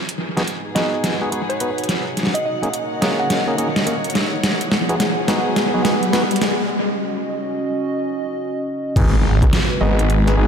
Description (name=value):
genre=glitch hop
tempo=106 BPM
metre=4/4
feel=swing 63% on 16ths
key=G# minor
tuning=A4 = 439 Hz
part: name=dark analog pad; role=sustained chords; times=0.0-10.5 s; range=G#3 to F#5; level=-26 LUFS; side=right 1 dB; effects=chorus, sidechain pumping
part: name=riser and impact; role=sound effects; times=2.0-10.5 s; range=none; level=-24 LUFS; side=equal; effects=none
part: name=warm chamber string section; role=texture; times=0.0-10.5 s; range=D#4 to F#5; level=-28 LUFS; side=left 2 dB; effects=sidechain pumping
part: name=dubstep drum kit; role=drums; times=0.1-10.4 s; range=crash cymbal, hi-hat, snare drum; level=-21 LUFS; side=equal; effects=analog delay
part: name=clav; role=stabs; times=0.4-10.5 s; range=A#3 to B4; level=-25 LUFS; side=equal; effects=vintage 12-bit sampler grit, sidechain pumping, analog delay
part: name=woody wave-folded pluck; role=melody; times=0.8-3.3, 9.8-10.0 s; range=C#5 to F#5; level=-26 LUFS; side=right 2 dB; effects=chorus, cassette tape, analog delay
part: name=phased detuned saw bass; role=bass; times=9.0-10.5 s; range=G#1 to C#2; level=-16 LUFS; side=equal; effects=phaser, tube saturation
part: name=electronic kick drum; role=drums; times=9.0-9.5 s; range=none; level=-16 LUFS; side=equal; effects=none
room=moderate echo chamber reverb, RT60 2.2 s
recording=echo-heavy mix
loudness=-17 LUFS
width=side -7 dB against mid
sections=0.0-9.0 A section; 9.0-10.5 B section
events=build-up 0.0-9.0; drum fill 0.0-6.7; riser 2.0-6.7; break 6.7-9.0; drop 9.0-10.5; impact 9.0-10.5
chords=0.0 G#m7; 2.2 F#6; 4.4 G#m7; 6.7 D#m7; 9.0 G#m7